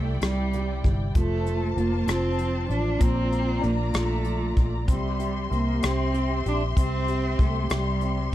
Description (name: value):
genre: six-eight pop ballad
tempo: 64 BPM (dotted quarters)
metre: 6/8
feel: straight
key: unclear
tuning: A4 = 440 Hz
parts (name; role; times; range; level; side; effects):
- warm cello; melody; 0.0-8.3 s; G3 to D4; -29 LUFS; right 3 dB; none
- warm concert grand piano; accompaniment; 0.0-8.3 s; Bb2 to G4; -31 LUFS; left 1 dB; none
- dark studio string section; sustained chords; 0.0-8.3 s; E4 to C6; -33 LUFS; left 4 dB; none
- vintage muted fingered electric bass; bass; 0.0-8.3 s; F1 to C2; -27 LUFS; equal; none
- soft brush drum kit; drums; 0.2-8.2 s; hi-hat, kick drum, rim click; -24 LUFS; equal; none
room: small room ambience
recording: dark, warm production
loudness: -22 LUFS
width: side -13 dB against mid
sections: 0.0-8.3 A section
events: none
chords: 0.0 C; 1.2 F; 3.0 Bb; 4.9 C